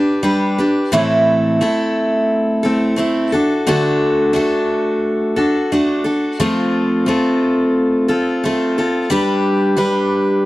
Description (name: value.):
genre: rock.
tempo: 88 BPM.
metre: 4/4.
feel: straight.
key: G major.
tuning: A4 = 440 Hz.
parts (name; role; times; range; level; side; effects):
picked steel-string acoustic guitar; solo; 0.0-10.5 s; A2 to B4; -14 LUFS; equal; none.
room: light reverb.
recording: dry, close 1970s-style studio recording.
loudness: -14 LUFS.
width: side -17 dB against mid.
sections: 0.0-10.5 A section.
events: none.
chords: 0.0 G; 0.9 Am; 3.3 D; 6.4 F; 9.1 G.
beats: 0.25 | 0.93 1.61 2.29 2.98 | 3.66 4.34 5.02 5.70 | 6.39 7.07 7.75 8.43 | 9.12 9.80.